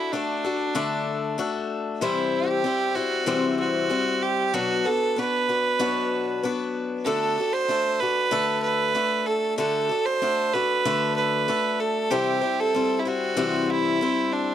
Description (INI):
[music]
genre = rock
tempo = 95 BPM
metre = 4/4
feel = straight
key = D mixolydian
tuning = A4 = 440 Hz
[part]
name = rich fiddle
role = melody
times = 0.0-14.5 s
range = D4 to C5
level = -24 LUFS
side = right 4 dB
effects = none
[part]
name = picked swing-style acoustic guitar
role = accompaniment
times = 0.0-14.5 s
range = B2 to C5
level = -25 LUFS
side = left 5 dB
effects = none
[sound]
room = light reverb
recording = dry, close 1970s-style studio recording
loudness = -22 LUFS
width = side -10 dB against mid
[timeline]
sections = 0.0-14.5 A section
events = none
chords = 0.0 D; 2.0 C; 4.5 Bm; 7.1 D; 12.1 C